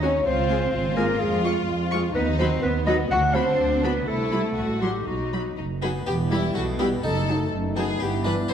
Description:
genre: cinematic, playful, whimsical film cue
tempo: 125 BPM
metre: 2/4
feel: straight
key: E minor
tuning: A4 = 440 Hz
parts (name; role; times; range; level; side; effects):
- clear studio violin section; melody; 0.0-8.3 s; Ab5 to Db6; -37 LUFS; left 4 dB; none
- warm clarinet; second line; 0.0-5.6 s; F#4 to F#5; -25 LUFS; left 2 dB; none
- warm studio violin section; second line; 0.0-8.5 s; B3 to C5; -29 LUFS; left 3 dB; none
- dark studio viola section; accompaniment; 0.0-8.3 s; E3 to Gb4; -30 LUFS; right 1 dB; none
- warm studio cello section; bass; 0.0-8.5 s; E2 to F#4; -29 LUFS; right 2 dB; none
- warm studio double bass section; bass; 0.0-8.5 s; E1 to F2; -27 LUFS; right 2 dB; none
- harpsichord; melody; 5.8-8.5 s; G3 to E4; -31 LUFS; left 3 dB; none
- warm French horn section; sustained chords; 6.1-8.5 s; E3 to E4; -30 LUFS; left 2 dB; none
room: wet scoring stage reverb, RT60 1.6 s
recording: dark, warm production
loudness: -21 LUFS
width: side -8 dB against mid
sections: 0.0-6.1 A section; 6.1-8.5 B section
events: none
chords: 0.3 Db; 1.2 Db/F (rootless); 2.2 B/D#; 3.1 Bm/D; 4.1 C; 4.6 F#m/A; 5.1 B; 6.1 Em; 7.0 D#dim/F#; 8.0 Em/G

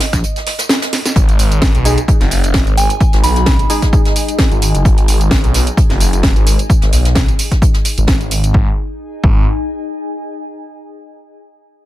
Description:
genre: bass house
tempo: 130 BPM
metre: 4/4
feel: swing 55% on 16ths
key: G# minor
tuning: A4 = 436 Hz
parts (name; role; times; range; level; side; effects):
- dark analog pad; sustained chords; 0.0-1.1 s; G#3 to F#5; -50 LUFS; right 4 dB; none
- house drum kit; drums; 0.0-8.5 s; hi-hat, snare drum, tambourine; -18 LUFS; equal; overdrive
- jazz brush drum kit; drums; 0.0-8.4 s; hi-hat, snare drum; -26 LUFS; right 2 dB; sidechain pumping on hats, high-pass filter on hats, high-pass filter on snare, high-pass filter on room
- warbly tape-like pad; texture; 0.0-10.4 s; D#4 to G#5; -28 LUFS; left 2 dB; chorus, built-in reverb, phaser, sidechain pumping
- electronic kick drum; drums; 0.1-9.3 s; none; -13 LUFS; equal; none
- phased detuned saw bass; bass; 1.2-9.4 s; F#1 to B1; -14 LUFS; equal; phaser, overdrive, sidechain pumping
- percussive organ stab; stabs; 1.9-5.1 s; G#3 to G#4; -21 LUFS; equal; ensemble chorus, sidechain pumping, dub echo
- soft synth bell; melody; 2.8-3.6 s; G#5 to B5; -19 LUFS; right 2 dB; chorus, vintage 12-bit sampler grit, dub echo
room: digital ambience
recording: none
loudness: -11 LUFS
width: side -15 dB against mid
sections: 0.0-1.2 A section; 1.2-8.5 B section; 8.5-10.4 C section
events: drop 0.0-1.2; kick drops out 0.2-1.2; drum fill 0.9; fade-out on ambient pad 1.2-8.5; filter sweep on detuned saw bass 1.2-8.5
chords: 0.0 G#5

